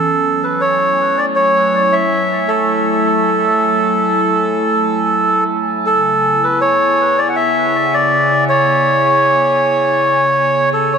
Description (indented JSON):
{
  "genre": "ambient",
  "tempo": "80 BPM",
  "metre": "4/4",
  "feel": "swing 53% on 16ths",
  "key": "F# minor",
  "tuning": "A4 = 439 Hz",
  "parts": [
    { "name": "melodica", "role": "melody", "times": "0.0-11.0 s", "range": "A4 to F#5", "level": "-12 LUFS", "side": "equal", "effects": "dub echo" },
    { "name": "warbly tape-like pad", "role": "sustained chords", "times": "0.0-11.0 s", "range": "C#3 to G#5", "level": "-19 LUFS", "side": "equal", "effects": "chorus, built-in reverb" }
  ],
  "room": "moderate spring reverb, RT60 1.7 s, small room ambience",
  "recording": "echo-heavy mix",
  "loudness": "-12 LUFS",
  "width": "side -6 dB against mid",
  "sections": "0.0-11.0 A section",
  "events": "none",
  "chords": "0.0 F#m9; 5.9 C#m7"
}